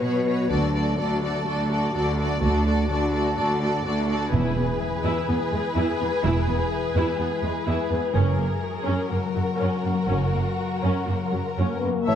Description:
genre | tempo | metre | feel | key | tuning
cinematic, heroic adventure film score | 125 BPM | 4/4 | straight | unclear | A4 = 440 Hz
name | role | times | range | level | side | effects
rich symphonic violin section | melody | 0.0-12.2 s | A#4 to E5 | -31 LUFS | left 2 dB | none
dark symphonic violin section | second line | 0.0-12.2 s | F#4 to C#5 | -31 LUFS | equal | none
rich symphonic viola section | accompaniment | 0.0-12.2 s | F#3 to E5 | -30 LUFS | equal | none
concert harp | arpeggios | 0.0-12.2 s | F#2 to E5 | -29 LUFS | left 6 dB | none
rich symphonic cello section | bass | 0.0-12.2 s | D2 to B2 | -26 LUFS | right 2 dB | none
rich symphonic double bass section | bass | 0.5-12.2 s | E1 to D2 | -26 LUFS | right 3 dB | none
timpani | percussion | 4.3-5.0 s | E2 | -32 LUFS | right 1 dB | none
mellow French horn section | sustained chords | 11.6-12.2 s | A3 to B3 | -25 LUFS | left 4 dB | none
mellow clarinet | second line | 12.1-12.2 s | C#5 | -27 LUFS | left 2 dB | none
mellow hollow concert flute | second line | 12.1 s | A5 | -30 LUFS | left 3 dB | none
warm cor anglais | second line | 12.1-12.2 s | E5 | -28 LUFS | right 1 dB | none
clear trombone section | sustained chords | 12.1-12.2 s | E3 to C#4 | -24 LUFS | right 5 dB | none
room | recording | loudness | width
moderate scoring stage reverb, RT60 2.0 s | dark, warm production | -22 LUFS | side -9 dB against mid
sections
0.0-12.1 A section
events
build-up 0.0-12.1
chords
0.0 Bsus2; 0.5 D; 4.3 E; 8.2 F#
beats
0.02 | 0.50 0.98 1.46 1.94 | 2.42 2.90 3.38 3.85 | 4.33 4.81 5.29 5.77 | 6.24 6.72 7.20 7.67 | 8.15 8.63 9.11 9.61 | 10.10 10.60 11.09 11.59 | 12.08

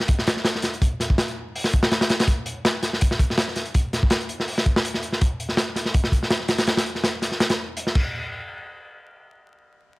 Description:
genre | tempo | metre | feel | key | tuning
drum and bass | 164 BPM | 4/4 | swing 55% on 16ths | none | none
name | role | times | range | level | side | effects
crunchy breakbeat drum kit | drums | 0.0-8.0 s | crash cymbal, hi-hat, kick drum, snare drum | -20 LUFS | equal | none
room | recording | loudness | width
little or no reverb | vinyl crackle | -20 LUFS | side -22 dB against mid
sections
0.0-8.1 A section; 8.1-10.0 B section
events
none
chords
none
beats
0.09 0.45 | 0.82 1.18 1.55 1.91 | 2.28 2.65 3.01 3.38 | 3.74 4.11 4.47 4.84 | 5.21 5.57 5.94 6.30 | 6.67 7.04 7.40 7.77

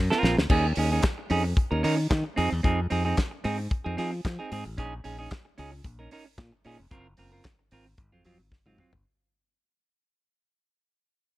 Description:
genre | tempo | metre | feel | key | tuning
disco | 112 BPM | 4/4 | straight | Bb minor | A4 = 440 Hz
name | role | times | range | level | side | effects
modern bright fingered electric bass | bass | 0.0-9.0 s | F1 to F3 | -28 LUFS | left 1 dB | none
clean electric guitar | accompaniment | 0.1-9.0 s | Gb3 to Bb4 | -29 LUFS | right 3 dB | none
damped 70s drum kit | drums | 0.1-9.0 s | crash cymbal, handclaps, hi-hat, kick drum, snare drum, toms | -27 LUFS | equal | none
room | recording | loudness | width
small room reverb | none | -24 LUFS | side -17 dB against mid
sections
0.0-9.1 A section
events
fade-out 0.0-9.1; drum fill 0.0-0.5, 8.5-9.1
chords
0.0 Gbmaj7#11 (rootless); 0.5 Eb7sus4; 2.4 Fm7; 4.8 Bbm7; 6.9 Gbmaj9#11; 8.0 Ab6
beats
| 0.50 1.04 1.57 2.11 | 2.64 3.17 3.71 4.24 | 4.78 5.31 5.85 6.38 | 6.92 7.45 7.98 8.52

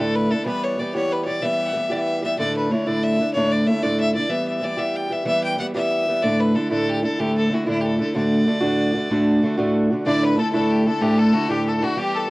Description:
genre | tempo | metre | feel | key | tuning
celtic folk, Celtic slide | 125 BPM (dotted quarters) | 12/8 | straight | D major | A4 = 441 Hz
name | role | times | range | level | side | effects
clear fiddle | melody | 0.0-12.3 s | E4 to G5 | -24 LUFS | left 1 dB | cassette tape, analog delay
fingerpicked steel-string acoustic guitar | accompaniment | 0.0-12.3 s | D2 to G4 | -20 LUFS | equal | cassette tape
rich fiddle | second line | 10.1-12.3 s | F#4 to D5 | -26 LUFS | left 3 dB | cassette tape
room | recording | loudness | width
wet booth ambience, RT60 0.3 s | home recording on cassette | -18 LUFS | side -21 dB against mid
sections
0.0-10.1 A section; 10.1-12.3 A section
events
none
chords
0.5 Em; 2.4 Dsus2; 4.3 Em; 6.2 Dsus2; 8.1 D; 10.1 Dsus2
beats
| 0.46 0.94 1.42 1.90 | 2.38 2.87 3.35 3.83 | 4.31 4.79 5.27 5.75 | 6.22 6.70 7.18 7.66 | 8.14 8.62 9.10 9.58 | 10.06 10.54 11.01 11.49 | 11.97

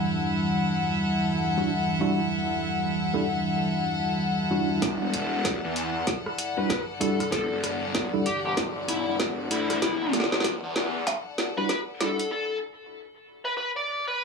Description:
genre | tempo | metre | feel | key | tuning
glitch hop | 96 BPM | 4/4 | swing 61% on 16ths | E minor | A4 = 437 Hz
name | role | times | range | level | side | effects
dark analog pad | sustained chords | 0.0-12.3 s | E3 to F#4 | -29 LUFS | right 1 dB | chorus, sidechain pumping
bright chamber string section | texture | 0.0-12.3 s | E4 to F#5 | -30 LUFS | left 3 dB | sidechain pumping
tine electric piano | stabs | 1.6-12.2 s | G3 to A4 | -29 LUFS | right 2 dB | overdrive, fast stereo tremolo, sidechain pumping, low-pass filter, tape echo
phased detuned saw bass | bass | 4.8-11.1 s | E1 to E2 | -31 LUFS | equal | phaser, overdrive, high-pass filter
drum and bass drum kit | drums | 4.8-12.3 s | hi-hat, rim click, snare drum | -28 LUFS | equal | none
electronic kick drum | drums | 4.8-11.8 s | none | -34 LUFS | right 1 dB | high-pass filter on kick
smooth overdriven lead guitar | melody | 6.6-14.2 s | E4 to D5 | -30 LUFS | left 2 dB | vintage 12-bit sampler grit, low-pass filter, tape echo
room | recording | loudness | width
wet small room reverb, RT60 0.6 s | high-pass filter, small room ambience | -24 LUFS | side -5 dB against mid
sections
0.0-4.8 A section; 4.8-14.2 B section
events
build-up 4.8-14.2; drum fill 4.8-12.3; filter sweep on tine electric piano 4.8-14.2; filter sweep on lead electric guitar 4.8-14.2; filter sweep on analog synth pad 4.8-14.2; filter sweep 4.8-14.2; break 12.3-14.2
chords
0.0 Em9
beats
0.45 1.07 1.70 | 2.32 2.95 3.57 4.20 | 4.82 5.45 6.07 6.70 | 7.32 7.95 8.57 9.20 | 9.82 10.45 11.07 11.70 | 12.32 12.95 13.57 14.20

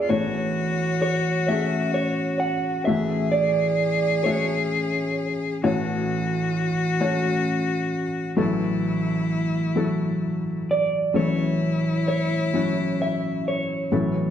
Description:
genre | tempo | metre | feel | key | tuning
acoustic folk-pop ballad | 44 BPM (dotted quarters) | 6/8 | straight | unclear | A4 = 438 Hz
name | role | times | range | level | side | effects
electric guitar through a small old amp | melody | 0.0-5.2, 10.7-14.3 s | C#5 to F#5 | -26 LUFS | right 3 dB | harmonic tremolo
clear cello | second line | 0.0-13.9 s | E4 to G#4 | -28 LUFS | left 6 dB | none
felt-muted upright piano | accompaniment | 0.0-14.3 s | A1 to G#5 | -27 LUFS | left 3 dB | none
concert harp | arpeggios | 0.0-14.3 s | E3 to G#4 | -26 LUFS | right 2 dB | none
room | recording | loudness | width
wet large studio reverb, RT60 1.4 s | dark, warm production | -21 LUFS | side -9 dB against mid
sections
0.1-14.3 A section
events
none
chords
0.1 A6; 2.9 F#m7/A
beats
| 0.11 1.50 | 2.88 4.26 | 5.63 7.01 | 8.38 9.77 | 11.15 12.54 | 13.92

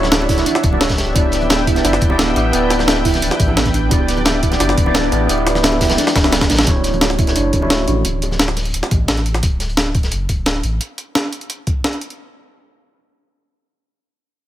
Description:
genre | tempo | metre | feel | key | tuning
liquid drum and bass | 174 BPM | 4/4 | straight | D major | A4 = 438 Hz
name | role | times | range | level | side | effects
overdriven tine electric piano | accompaniment | 0.0-8.0 s | A3 to G5 | -20 LUFS | left 1 dB | phaser, low-pass filter, digital delay
lush unison pad | sustained chords | 0.0-6.6 s | D4 to G5 | -24 LUFS | equal | chorus, sidechain pumping
warm sub bass | bass | 0.0-10.8 s | D1 to A1 | -21 LUFS | equal | none
breakbeat sampler-style drum kit | drums | 0.0-12.2 s | hi-hat, snare drum | -18 LUFS | equal | none
crunchy breakbeat drum kit | drums | 0.0-10.7 s | hi-hat, snare drum | -24 LUFS | equal | high-pass filter on hats, high-pass filter on snare, high-pass filter on room
congas and bongos | percussion | 0.0-9.2 s | none | -28 LUFS | right 2 dB | none
harp-like synth pluck | arpeggios | 0.1-8.0 s | B3 to E5 | -22 LUFS | right 4 dB | chorus, phaser, digital delay
electronic kick drum | drums | 0.3-11.7 s | none | -18 LUFS | equal | none
room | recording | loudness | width
light reverb | none | -14 LUFS | side -12 dB against mid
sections
0.0-6.7 A section; 6.7-12.2 B section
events
drop 0.0-6.7; drum fill 6.2-6.7; filter sweep on synth pluck 6.7-8.1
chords
0.0 Dmaj9; 1.0 G6/D; 6.7 Dmaj9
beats
0.12 0.47 0.81 | 1.15 1.50 1.84 2.19 | 2.53 2.88 3.22 3.57 | 3.91 4.26 4.60 4.95 | 5.29 5.64 5.98 6.33 | 6.67 7.02 7.36 7.71 | 8.05 8.40 8.74 9.09 | 9.43 9.78 10.12 10.46 | 10.81 11.15 11.50 11.84

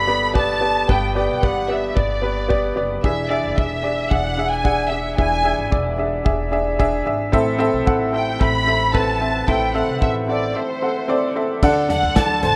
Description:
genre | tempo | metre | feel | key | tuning
piano-driven pop | 112 BPM | 4/4 | straight | G major | A4 = 440 Hz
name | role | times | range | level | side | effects
dark studio violin section | melody | 0.0-12.6 s | C5 to B5 | -24 LUFS | equal | none
bright upright piano | accompaniment | 0.0-12.6 s | G2 to F#5 | -22 LUFS | equal | none
upright bass | bass | 0.0-12.6 s | E1 to D2 | -29 LUFS | equal | none
modern studio drum kit | drums | 0.4-12.6 s | crash cymbal, hi-hat, kick drum, snare drum, toms | -23 LUFS | equal | none
warm studio string section | sustained chords | 11.6-12.6 s | F#3 to A4 | -35 LUFS | equal | none
room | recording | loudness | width
light reverb, studio ambience | rough home demo mix | -19 LUFS | mono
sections
0.0-11.6 A section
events
none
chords
0.0 G; 3.0 E7; 7.3 Am; 11.6 D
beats
0.35 | 0.89 1.43 1.96 2.50 | 3.04 3.57 4.11 4.65 | 5.18 5.72 6.26 6.80 | 7.33 7.87 8.41 8.95 | 9.48 10.02 10.55 11.09 | 11.63 12.16

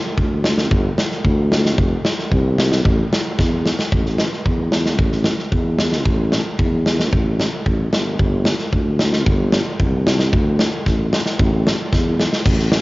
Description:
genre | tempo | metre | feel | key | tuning
klezmer | 112 BPM | 2/4 | straight | A minor | A4 = 440 Hz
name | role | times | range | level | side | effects
mellow tuba | bass | 0.2-12.8 s | F1 to E2 | -19 LUFS | equal | none
big rock drum kit | drums | 0.2-12.8 s | crash cymbal, kick drum, snare drum | -17 LUFS | equal | cassette tape
room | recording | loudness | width
light reverb | home recording on cassette, nothing above 7.5 kHz | -15 LUFS | side -21 dB against mid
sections
0.0-3.9 A section; 3.9-12.5 B section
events
drum fill 3.4-3.9, 11.9-12.5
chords
none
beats
0.17 | 0.71 1.24 | 1.78 2.31 | 2.85 3.38 | 3.92 4.46 | 4.99 5.53 | 6.06 6.60 | 7.13 7.66 | 8.20 8.73 | 9.27 9.80 | 10.33 10.86 | 11.40 11.93 | 12.46

